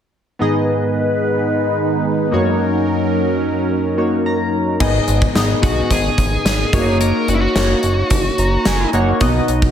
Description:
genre	1980s-style pop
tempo	109 BPM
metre	4/4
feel	straight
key	G# minor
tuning	A4 = 438 Hz
part	chorused retro synth keys	accompaniment	0.4-9.7 s	F#2 to A#5	-18 LUFS	left 1 dB	none
part	phased analog pad	sustained chords	0.4-4.8 s	F#3 to B4	-20 LUFS	right 1 dB	phaser, chorus
part	mellow synth brass	stabs	0.4-4.8 s	D#3 to A#4	-22 LUFS	right 1 dB	chorus, analog delay
part	chorused synth bass	bass	4.8-9.7 s	F#1 to B1	-19 LUFS	equal	none
part	gated 80s drum kit	drums	4.8-9.7 s	crash cymbal, hi-hat, kick drum, snare drum	-19 LUFS	equal	none
part	fuzz lead guitar	melody	5.6-8.9 s	E4 to A#4	-21 LUFS	equal	distortion
room	moderate plate reverb, RT60 2.2 s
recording	dreamy mix soaked in reverb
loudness	-14 LUFS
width	side -9 dB against mid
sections	0.4-4.8 A section; 4.8-9.7 B section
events	synth keys fill 4.0-4.8, 8.1-9.2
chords	0.4 G#m; 2.3 F#6; 4.8 G#m; 6.7 F#6; 9.2 B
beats	| 0.40 0.95 1.50 2.05 | 2.60 3.15 3.70 4.25 | 4.80 5.36 5.91 6.46 | 7.01 7.56 8.11 8.66 | 9.21

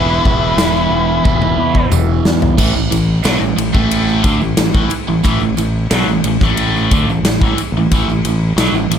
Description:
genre	classic rock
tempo	90 BPM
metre	4/4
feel	straight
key	unclear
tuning	A4 = 440 Hz
part	octave-fuzz lead guitar	melody	0.0-1.9 s	B4	-19 LUFS	left 2 dB	distortion, slapback echo
part	octave-fuzz lead guitar	second line	0.0-1.9 s	E4	-22 LUFS	right 3 dB	distortion
part	biting overdriven guitar	riff	0.0-9.0 s	E2 to A3	-19 LUFS	right 12 dB	phaser
part	crunchy overdriven guitar	riff	0.0-9.0 s	A2 to G#4	-20 LUFS	left 12 dB	phaser
part	growling fingered electric bass	bass	0.0-9.0 s	E1 to E2	-18 LUFS	equal	overdrive
part	huge arena drum kit	drums	0.3-9.0 s	crash cymbal, kick drum, ride cymbal, snare drum, toms	-16 LUFS	equal	none
part	tambourine	percussion	0.6-9.0 s	none	-33 LUFS	right 15 dB	none
room	small room ambience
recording	none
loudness	-12 LUFS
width	side -8 dB against mid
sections	0.0-2.6 A section; 2.6-9.0 B section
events	drum fill 1.2-2.6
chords	0.0 E; 2.6 A5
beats	0.58 1.25 1.92 | 2.58 3.25 3.92 4.58 | 5.25 5.92 6.59 7.25 | 7.92 8.59

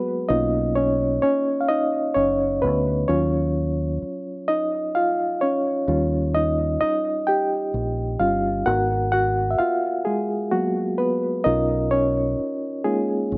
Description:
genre	slow six-eight R&B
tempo	43 BPM (dotted quarters)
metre	6/8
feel	straight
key	unclear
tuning	A4 = 440 Hz
part	reed electric piano	accompaniment	0.0-13.4 s	F#3 to G5	-20 LUFS	equal	fast tremolo, slapback echo
part	deep dub fingered electric bass	bass	0.3-13.4 s	F#1 to D#2	-25 LUFS	equal	none
room	little or no reverb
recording	recorded outdoors, with no room sound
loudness	-19 LUFS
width	side -28 dB against mid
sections	0.0-13.4 A section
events	reed electric piano solo 0.0-13.4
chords	0.3 Bmaj9#11; 3.1 D#m9; 5.9 D#9; 8.7 G#m9; 11.4 Bmaj9#11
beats	| 0.28 1.68 | 3.08 4.47 | 5.87 7.26 | 8.66 10.05 | 11.45 12.84

